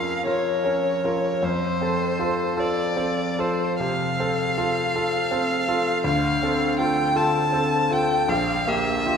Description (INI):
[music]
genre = classical, romantic duo for violin and grand piano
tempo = 47-54 BPM (dotted quarters)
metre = 12/8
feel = rubato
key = F major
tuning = A4 = 440 Hz
[part]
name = clear violin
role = melody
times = 0.0-9.2 s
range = C5 to A5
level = -24 LUFS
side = left 1 dB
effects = none
[part]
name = bright grand piano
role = accompaniment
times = 0.0-9.2 s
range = Bb1 to Bb4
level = -23 LUFS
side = equal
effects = none
[sound]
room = wet scoring stage reverb, RT60 2.0 s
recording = heard from further back in the room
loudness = -20 LUFS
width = side -6 dB against mid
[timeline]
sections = 0.0-9.2 A section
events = none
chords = 0.0 Bbm/F; 1.4 F; 6.1 Dm7; 8.3 Gm7/Bb